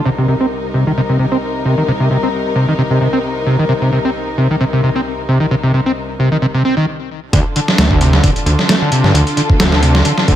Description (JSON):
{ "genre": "breakbeat, breaks", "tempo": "132 BPM", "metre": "4/4", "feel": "swing 54% on 16ths", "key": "C dorian", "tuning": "A4 = 440 Hz", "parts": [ { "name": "dark studio string section", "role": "sustained chords", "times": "0.0-10.4 s", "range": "C2 to Bb4", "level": "-20 LUFS", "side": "left 2 dB", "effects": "vintage 12-bit sampler grit, sidechain pumping" }, { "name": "screaming distorted acid line", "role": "riff", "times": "0.1-10.3 s", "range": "C3 to C4", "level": "-14 LUFS", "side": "equal", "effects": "distortion, analog chorus, ping-pong delay" }, { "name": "detuned saw bass", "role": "bass", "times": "7.3-10.4 s", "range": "D1 to G2", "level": "-14 LUFS", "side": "equal", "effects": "none" }, { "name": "dusty soul sampler-style drum kit", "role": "drums", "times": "7.3-10.4 s", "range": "hi-hat, kick drum, snare drum", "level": "-13 LUFS", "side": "equal", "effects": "overdrive" } ], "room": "light reverb", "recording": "none", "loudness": "-12 LUFS", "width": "side -11 dB against mid", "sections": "0.0-7.3 A section; 7.3-10.4 B section", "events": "filter sweep on acid bass 0.0-7.3; stop 6.9-7.3; drop 7.3-10.4", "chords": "0.1 Cm7; 7.3 Dm" }